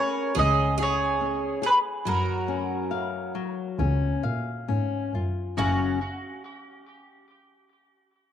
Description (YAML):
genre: fado-style ballad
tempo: 66-73 BPM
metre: 4/4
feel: rubato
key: F# major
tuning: A4 = 441 Hz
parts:
  - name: mandolin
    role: melody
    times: 0.0-6.0 s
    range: F#4 to D#5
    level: -26 LUFS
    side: right 1 dB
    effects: tape echo
  - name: picked twelve-string acoustic guitar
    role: second line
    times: 0.0-6.0 s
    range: C#4 to A#4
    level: -33 LUFS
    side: right 10 dB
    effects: none
  - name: flamenco guitar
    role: accompaniment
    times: 0.0-6.0 s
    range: F#2 to E#5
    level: -30 LUFS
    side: left 8 dB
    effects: none
  - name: dark double bass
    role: bass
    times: 0.4-6.0 s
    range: F#1 to A#2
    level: -28 LUFS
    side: equal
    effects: none
room: wet spring reverb, RT60 2.8 s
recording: 1960s-style stereo with parts hard left and right, lossy compression artefacts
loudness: -24 LUFS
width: side -9 dB against mid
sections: 0.0-5.6 A section; 5.6-8.3 B section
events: none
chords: 0.4 C#5; 2.1 F#maj7; 5.6 F#maj7(no3)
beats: 0.36 1.21 | 2.05 2.91 3.78 4.68 | 5.57